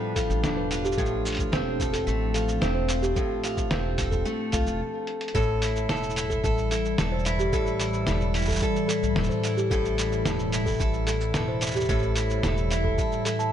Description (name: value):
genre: folktronica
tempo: 110 BPM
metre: 4/4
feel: straight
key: A minor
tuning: A4 = 438 Hz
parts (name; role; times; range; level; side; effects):
- warbly tape-like pad; sustained chords; 0.0-13.5 s; A2 to D4; -31 LUFS; equal; chorus, built-in reverb, phaser
- picked steel-string acoustic guitar; arpeggios; 0.0-13.5 s; A2 to B4; -30 LUFS; equal; tape echo
- music box; second line; 0.2-13.5 s; G4 to A5; -30 LUFS; equal; tape echo
- electronic kick drum; drums; 0.2-13.1 s; none; -30 LUFS; equal; none
- lo-fi sampler-style drum kit; drums; 0.2-13.5 s; hi-hat, shaker, snare drum; -31 LUFS; right 1 dB; none
- upright bass; bass; 0.3-12.9 s; E1 to C2; -29 LUFS; equal; none
room: light reverb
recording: nothing above 10.7 kHz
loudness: -23 LUFS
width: side -10 dB against mid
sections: 0.0-5.3 A section; 5.3-13.5 B section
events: stop 4.8-5.3; drum fill 5.1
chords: 0.0 G7; 1.0 Dm7; 5.3 A7(no3)